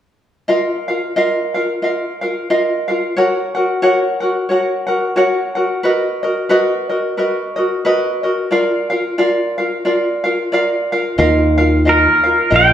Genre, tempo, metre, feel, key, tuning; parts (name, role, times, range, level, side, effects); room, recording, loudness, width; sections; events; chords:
Hawaiian; 90 BPM; 4/4; swing 58% on 8ths; A4 = 440 Hz
tenor ukulele; accompaniment; 0.5-12.7 s; F4 to Gb5; -15 LUFS; equal
modern bright fingered electric bass; bass; 11.2-12.7 s; Bb1 to Eb2; -15 LUFS; equal
pedal steel guitar; melody; 11.9-12.7 s; Bb4 to G5; -10 LUFS; right 1 dB
wet large studio reverb, RT60 1.2 s; band playing live in one room; -14 LUFS; side -10 dB against mid
0.5-11.2 A section; 11.2-12.7 B section
0.5 Ebsus2; 3.2 Gb; 5.8 Bmaj7; 8.5 Bb; 11.2 Ebsus2